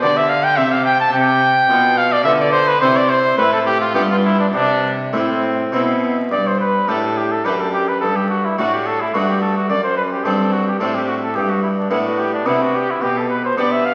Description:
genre	classical, baroque-style sonata movement with continuo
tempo	107 BPM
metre	3/4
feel	rubato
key	C major, G major from 6.3 s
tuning	A4 = 440 Hz
part	clear trumpet	melody	0.0-13.9 s	C4 to A5	-19 LUFS	equal	none
part	harpsichord	accompaniment	0.0-13.9 s	F#2 to G4	-22 LUFS	equal	none
part	dark cello	bass	0.0-13.9 s	F#2 to B3	-24 LUFS	equal	none
room	wet recital hall reverb, RT60 1.7 s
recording	very old 78 rpm record, vinyl crackle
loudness	-17 LUFS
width	mono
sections	0.0-6.3 A section; 6.3-13.9 A section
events	none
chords	0.0 G5; 0.6 C5; 1.1 G7; 2.8 C; 3.4 Am; 3.9 G7; 4.5 C; 6.3 G5; 8.0 D/G; 9.7 D7/F#; 11.4 G; 13.0 G/B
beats	0.03 0.58 | 1.13 1.69 2.25 | 2.81 3.37 3.94 | 4.53 5.13 5.72 | 6.31 6.88 7.45 | 8.02 8.58 9.14 | 9.69 10.24 10.80 | 11.35 11.90 12.46 | 13.02 13.57

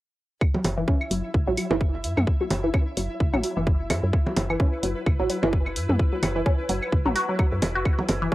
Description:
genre	minimal techno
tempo	129 BPM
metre	4/4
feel	swing 57% on 16ths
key	unclear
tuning	A4 = 445 Hz
part	electronic kick drum	drums	0.4-8.3 s	none	-22 LUFS	equal	cassette tape
part	electronic claves, bongos and toms	percussion	0.4-8.2 s	none	-28 LUFS	right 1 dB	cassette tape, tape echo
part	pulsing gated texture	texture	0.6-8.3 s	E4 to E5	-34 LUFS	left 1 dB	chorus, built-in reverb, sidechain pumping, cassette tape
part	resonant blip pluck	riff	0.5-8.3 s	E3 to F#4	-27 LUFS	equal	phaser, sidechain pumping, cassette tape, tape echo
part	woody FM bass	bass	0.6-8.3 s	E1 to F#2	-28 LUFS	equal	sidechain pumping
part	electronic hi-hat	drums	0.6-8.2 s	none	-32 LUFS	left 1 dB	overdrive, cassette tape
room	moderate small room reverb, RT60 0.6 s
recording	home recording on cassette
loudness	-22 LUFS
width	side -16 dB against mid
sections	0.4-8.3 A section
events	none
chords	0.4 F#5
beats	| 0.41 0.88 1.34 1.81 | 2.27 2.74 3.20 3.67 | 4.13 4.60 5.06 5.53 | 5.99 6.46 6.92 7.39 | 7.85 8.32

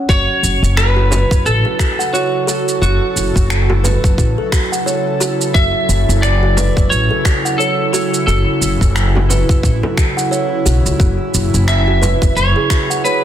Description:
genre	organic downtempo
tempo	88 BPM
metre	4/4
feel	swing 58% on 16ths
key	F# minor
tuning	A4 = 440 Hz
part	clean lap steel guitar	melody	0.1-13.2 s	F#4 to E5	-18 LUFS	right 1 dB	digital delay
part	airy breathy pad	sustained chords	0.1-13.2 s	C#3 to A4	-22 LUFS	right 1 dB	chorus, sidechain pumping
part	kalimba	arpeggios	0.1-13.2 s	F#4 to F#5	-21 LUFS	right 1 dB	tape echo
part	upright bass	bass	0.1-12.5 s	F#1 to C#2	-15 LUFS	equal	sidechain pumping
part	electronic kick drum	drums	0.1-12.9 s	none	-15 LUFS	equal	none
part	electronic shaker and finger snaps	drums	0.1-13.2 s	none	-22 LUFS	right 2 dB	soft clipping on snare
part	frame drum	percussion	1.1-12.2 s	none	-24 LUFS	right 2 dB	none
room	light reverb, digital ambience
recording	dense, heavily limited modern master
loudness	-12 LUFS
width	side -10 dB against mid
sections	0.1-13.2 A section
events	none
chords	0.1 F#m7; 11.0 C#m/F#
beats	| 0.09 0.77 1.45 2.13 | 2.82 3.50 4.18 4.86 | 5.54 6.23 6.91 7.59 | 8.27 8.95 9.63 10.32 | 11.00 11.68 12.36 13.04

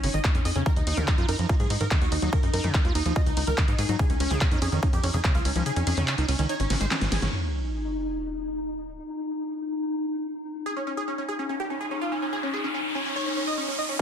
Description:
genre	psychedelic trance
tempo	144 BPM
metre	4/4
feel	straight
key	unclear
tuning	A4 = 436 Hz
part	supersaw stab	melody	0.0-7.3, 10.7-14.0 s	Db4 to Eb5	-31 LUFS	right 1 dB	phaser, sidechain pumping, tape echo
part	pulsing gated texture	sustained chords	0.0-14.0 s	Eb4	-32 LUFS	left 2 dB	chorus, built-in reverb, vintage 12-bit sampler grit, sidechain pumping
part	overdriven acid bass	riff	0.0-7.3, 14.0 s	C3 to F4	-32 LUFS	moving between left 5 dB and right 5 dB	distortion, auto-pan, sidechain pumping, dub echo
part	tight sequencer bass	bass	0.0-7.3 s	Ab1 to Ab2	-27 LUFS	equal	none
part	big-room dance drum kit	drums	0.0-7.3, 14.0 s	handclaps, hi-hat, ride cymbal, snare drum	-31 LUFS	equal	studio ambience
part	electronic kick drum	drums	0.2-5.3, 14.0 s	none	-24 LUFS	equal	studio ambience
part	sub drop and riser	sound effects	7.3-14.0 s	none	-32 LUFS	equal	none
room	light reverb, digital ambience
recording	dense, heavily limited modern master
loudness	-24 LUFS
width	side -9 dB against mid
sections	0.0-7.3 A section; 7.3-14.0 B section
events	drop 0.0-7.3; kick drops out 5.7-7.3; drum fill 6.7-7.3; band accent 7.2; impact 7.3-9.0; riser 11.2-14.0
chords	0.0 Db5; 0.7 Dbadd9; 4.0 Db5; 7.3 N.C.; 10.7 Dbsus2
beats	0.24 | 0.66 1.08 1.49 1.91 | 2.33 2.74 3.16 3.58 | 3.99 4.41 4.83 5.24 | 5.66 6.08 6.49 6.91 | 7.33 7.74 8.16 8.58 | 8.99 9.41 9.83 10.24 | 10.66 11.08 11.49 11.91 | 12.33 12.74 13.16 13.58 | 13.99

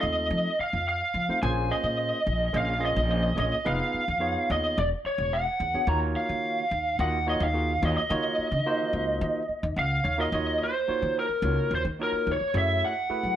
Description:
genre	jazz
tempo	108 BPM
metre	4/4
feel	straight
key	Eb dorian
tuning	A4 = 440 Hz
part	lead guitar through a small cranked amp	melody	0.0-13.4 s	Bb4 to Bb5	-26 LUFS	equal	overdrive
part	barky tine electric piano	accompaniment	0.0-13.4 s	A3 to Gb5	-32 LUFS	right 2 dB	medium stereo tremolo
part	upright bass	bass	0.0-13.4 s	E1 to Gb3	-29 LUFS	equal	none
room	light reverb, studio ambience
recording	none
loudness	-24 LUFS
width	side -10 dB against mid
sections	0.0-10.3 A section; 10.3-13.4 B section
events	tine electric piano fill 9.5-10.3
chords	0.0 F7; 1.4 Bbm9; 3.7 Fm7b5; 4.8 Esus2; 5.9 Ebm9; 12.5 Gbm9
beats	0.31 0.87 | 1.42 1.98 2.54 3.09 | 3.65 4.21 4.76 5.32 | 5.88 6.43 6.99 7.54 | 8.10 8.66 9.21 9.77 | 10.32 10.88 11.44 11.99 | 12.55 13.11

